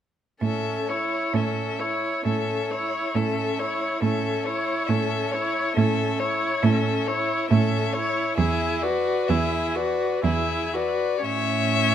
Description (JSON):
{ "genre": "classical, slow romantic movement for string quartet", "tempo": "57-70 BPM", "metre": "3/4", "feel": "rubato", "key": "A major", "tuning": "A4 = 440 Hz", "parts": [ { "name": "rich violin", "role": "melody", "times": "0.4-11.9 s", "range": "C#5 to E5", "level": "-29 LUFS", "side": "left 8 dB", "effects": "none" }, { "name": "rich violin", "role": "second line", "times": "0.4-11.9 s", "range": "G#4 to C#5", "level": "-27 LUFS", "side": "left 3 dB", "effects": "none" }, { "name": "rich viola", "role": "accompaniment", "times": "0.4-11.9 s", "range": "C#4 to F#4", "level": "-28 LUFS", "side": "right 3 dB", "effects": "none" }, { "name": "clear cello", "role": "bass", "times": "0.4-11.9 s", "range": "E2 to A2", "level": "-25 LUFS", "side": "right 3 dB", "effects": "none" } ], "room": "moderate scoring stage reverb, RT60 1.7 s", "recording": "close, detailed microphones", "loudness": "-22 LUFS", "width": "side -9 dB against mid", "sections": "0.4-11.3 A section", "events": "none", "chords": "0.4 A; 8.4 E9; 11.3 A", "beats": "| 0.41 1.34 2.25 | 3.15 4.02 4.89 | 5.76 6.64 7.51 | 8.38 9.29 10.24 | 11.25" }